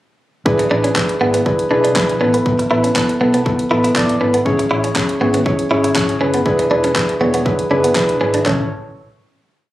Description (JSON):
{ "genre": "dance-pop", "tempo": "120 BPM", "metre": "4/4", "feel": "straight", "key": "unclear", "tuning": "A4 = 440 Hz", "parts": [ { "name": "soft electric-piano-like synth keys", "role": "accompaniment", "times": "0.5-8.7 s", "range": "B3 to D5", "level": "-16 LUFS", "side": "equal", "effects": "chorus, sidechain pumping" }, { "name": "vintage muted fingered electric bass", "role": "bass", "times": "0.5-8.7 s", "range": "E1 to B1", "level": "-24 LUFS", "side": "equal", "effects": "sidechain pumping" }, { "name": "pop drum kit", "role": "drums", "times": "0.5-8.6 s", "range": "handclaps, hi-hat, kick drum, snare drum, toms", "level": "-20 LUFS", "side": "equal", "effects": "none" }, { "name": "direct-recorded clean electric guitar", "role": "riff", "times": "0.6-8.6 s", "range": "B3 to E4", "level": "-20 LUFS", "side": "right 2 dB", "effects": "ensemble chorus" } ], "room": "light reverb, digital ambience", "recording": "recorded on a phone in the room, club reverb, compression", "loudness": "-13 LUFS", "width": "side -15 dB against mid", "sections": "0.5-8.5 pre-chorus; 8.5-9.7 final chord", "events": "none", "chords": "0.5 E7; 4.5 C#m; 6.5 E7; 8.5 A" }